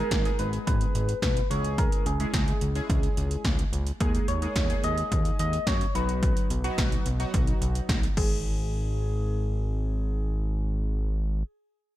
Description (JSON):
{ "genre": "synth-pop", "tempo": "108 BPM", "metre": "4/4", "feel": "straight", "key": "unclear", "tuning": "A4 = 444 Hz", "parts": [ { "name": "soft struck synth lead", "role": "melody", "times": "0.0-11.4 s", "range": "G#4 to D#5", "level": "-33 LUFS", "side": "left 1 dB", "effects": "chorus, phaser, slapback echo" }, { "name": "warm analog keys", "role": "accompaniment", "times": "0.0-8.1 s", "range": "F#3 to G#4", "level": "-34 LUFS", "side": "equal", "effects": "chorus, phaser" }, { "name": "fat analog bass", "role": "bass", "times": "0.0-11.4 s", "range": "G#1 to F#2", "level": "-28 LUFS", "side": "equal", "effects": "none" }, { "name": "80s electronic pad drums", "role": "drums", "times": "0.1-8.3 s", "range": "crash cymbal, hi-hat, kick drum, snare drum", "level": "-27 LUFS", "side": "equal", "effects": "none" } ], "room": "digital ambience", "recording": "none", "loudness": "-24 LUFS", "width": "side -14 dB against mid", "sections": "0.0-8.4 A section; 8.4-10.7 B section", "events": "none", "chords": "0.0 G#m; 1.5 C#m; 4.0 D#sus4; 5.9 B; 8.2 N.C.", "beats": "0.12 0.67 1.23 | 1.78 2.34 2.89 3.45 | 4.00 4.56 5.12 5.67 | 6.23 6.78 7.34 7.89 | 8.45 9.01 9.56 10.12" }